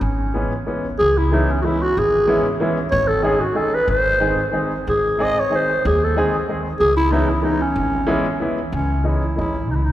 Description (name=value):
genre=musette waltz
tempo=186 BPM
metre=3/4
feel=rubato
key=C# minor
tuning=A4 = 440 Hz
part: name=growling clarinet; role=melody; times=0.0-9.9 s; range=C#4 to D#5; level=-19 LUFS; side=equal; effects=none
part: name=upright bass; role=bass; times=0.0-9.9 s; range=G#1 to D#2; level=-23 LUFS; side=equal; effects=none
part: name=clear upright piano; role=accompaniment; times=0.3-9.5 s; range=D#3 to G#4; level=-23 LUFS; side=equal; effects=none
room=wet church reverb, RT60 3.4 s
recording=recorded in a church or concert hall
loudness=-16 LUFS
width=side -13 dB against mid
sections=1.0-8.7 A section; 8.7-9.9 B section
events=none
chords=0.0 C#m7; 2.9 G#sus4; 3.9 G#; 6.8 C#m7; 8.7 C#madd9